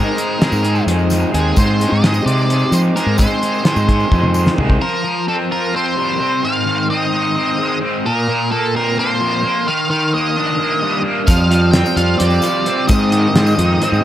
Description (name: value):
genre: psychedelic rock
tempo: 260 BPM (eighths)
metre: 7/8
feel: straight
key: unclear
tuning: A4 = 440 Hz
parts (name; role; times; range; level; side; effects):
- octave-fuzz lead guitar; melody; 0.0-14.0 s; Ab4 to G5; -19 LUFS; right 1 dB; distortion, dub echo
- pedal harmonium; sustained chords; 0.0-4.8, 11.3-14.0 s; G3 to F4; -24 LUFS; right 6 dB; none
- crunchy overdriven guitar; riff; 0.0-14.0 s; Ab2 to Ab4; -18 LUFS; left 1 dB; harmonic tremolo
- cloth-damped thuddy drum kit; drums; 0.2-4.8, 11.3-13.9 s; hi-hat, kick drum, snare drum, toms; -17 LUFS; equal; none
- tambourine; percussion; 0.2-4.5, 11.3-14.0 s; none; -34 LUFS; left 5 dB; dub echo
- fuzz fingered electric bass; bass; 0.5-4.8, 11.3-14.0 s; C2 to F3; -16 LUFS; equal; overdrive
room: small room ambience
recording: echo-heavy mix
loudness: -13 LUFS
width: side -12 dB against mid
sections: 0.0-4.8 A section; 4.8-14.0 B section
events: drum fill 4.1-4.8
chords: 0.0 Ab; 4.8 Fsus2; 6.4 Ab; 8.0 Bbsus2; 9.7 Ebmaj7; 11.3 Fsus2; 12.9 Ab